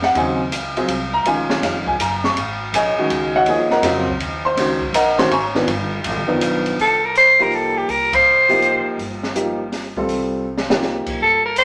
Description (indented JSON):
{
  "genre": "modal jazz",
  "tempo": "163 BPM",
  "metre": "3/4",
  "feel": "swing 66% on 8ths",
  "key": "C dorian from 6.8 s",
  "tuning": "A4 = 442 Hz",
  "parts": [
    { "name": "warm baby grand piano", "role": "accompaniment", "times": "0.0-11.2 s", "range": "Db3 to Db6", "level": "-21 LUFS", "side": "equal", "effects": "none" },
    { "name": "upright bass", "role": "bass", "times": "0.0-11.6 s", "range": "F1 to F2", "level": "-34 LUFS", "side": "equal", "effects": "none" },
    { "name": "open jazz drum kit", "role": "drums", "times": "0.0-11.6 s", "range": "crash cymbal, hi-hat, kick drum, ride cymbal, snare drum", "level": "-26 LUFS", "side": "equal", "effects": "none" },
    { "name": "growling soprano saxophone", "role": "melody", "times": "6.8-8.9, 11.2-11.6 s", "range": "G4 to C5", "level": "-15 LUFS", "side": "equal", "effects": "none" }
  ],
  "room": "wet studio reverb, RT60 0.8 s",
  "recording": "none",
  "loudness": "-18 LUFS",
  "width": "mono",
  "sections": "0.0-6.8 A section; 6.8-11.6 B section",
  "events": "band accent 8.1; drum fill 10.5-10.8",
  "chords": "0.0 Eb9sus4; 2.4 Ab9sus4; 5.7 G7b13; 6.8 Cm11"
}